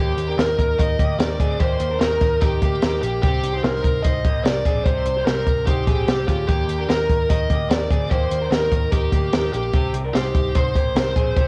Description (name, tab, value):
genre	jangly indie pop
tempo	148 BPM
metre	4/4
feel	straight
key	Eb major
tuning	A4 = 440 Hz
part	bluesy overdriven lead guitar	melody	0.0-11.5 s	G4 to Eb5	-26 LUFS	equal	distortion, cassette tape
part	electric guitar through a small old amp	arpeggios	0.0-11.5 s	Ab3 to C5	-30 LUFS	equal	cassette tape
part	vintage muted picked electric bass	bass	0.0-11.5 s	Bb1 to Eb2	-28 LUFS	equal	none
part	compact cocktail drum kit	drums	0.2-11.5 s	hi-hat, kick drum, snare drum	-23 LUFS	equal	cassette tape
room	light reverb, small room reverb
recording	home recording on cassette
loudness	-20 LUFS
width	mono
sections	0.0-11.5 A section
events	none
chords	0.0 Eb; 3.2 Cm; 6.5 Eb